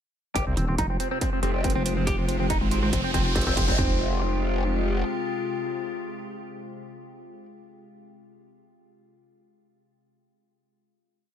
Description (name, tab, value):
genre	heavy wobble dubstep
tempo	140 BPM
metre	4/4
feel	half-time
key	F minor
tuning	A4 = 441 Hz
part	semi-hollow electric guitar	melody	0.4-7.5 s	C4 to G4	-30 LUFS	right 1 dB	phaser, digital delay
part	evolving wavetable pad	sustained chords	0.8-7.5 s	C3 to G4	-32 LUFS	left 2 dB	chorus, built-in reverb, sidechain pumping
part	growl bass	bass	0.4-5.0 s	F1 to C2	-26 LUFS	equal	chorus, overdrive
part	dubstep drum kit	drums	0.4-3.9 s	kick drum, toms	-28 LUFS	equal	distortion, studio ambience
part	electronic hi-hat	drums	0.4-3.7 s	none	-34 LUFS	right 6 dB	studio ambience
part	riser	sound effects	2.0-3.8 s	none	-32 LUFS	right 1 dB	none
part	vowel-sweep wobble bass	bass	0.6-3.3 s	Eb1 to Ab1	-26 LUFS	equal	chorus, overdrive
room	light reverb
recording	none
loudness	-23 LUFS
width	side -9 dB against mid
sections	0.4-3.8 build; 3.8-7.2 final chord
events	build-up 0.4-3.8; riser 2.0-3.8; drum fill 2.1-3.8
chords	0.4 Fmadd9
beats	| 0.36 0.79 1.21 1.64 | 2.07 2.50 2.93 3.36 | 3.79 4.21 4.64 5.07 | 5.50 5.93 6.36 6.79